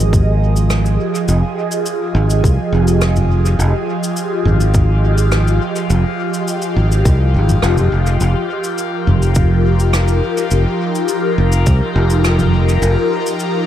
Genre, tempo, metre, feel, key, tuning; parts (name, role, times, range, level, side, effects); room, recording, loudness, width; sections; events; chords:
ambient dub; 104 BPM; 4/4; straight; F minor; A4 = 440 Hz
airy breathy pad; sustained chords; 0.0-13.7 s; F3 to Eb5; -18 LUFS; equal; chorus, phaser
fingered electric bass; bass; 0.0-13.0 s; F1 to C2; -13 LUFS; equal
soft-mallet drum kit; drums; 0.0-13.5 s; cabasa, rim click, toms; -23 LUFS; left 1 dB; dub echo
electronic kick drum; drums; 0.1-11.8 s; -14 LUFS; equal
light reverb, studio reverb; -13 LUFS; side -11 dB against mid
0.0-13.7 A section
0.0 Fm9; 8.2 Ebadd9/F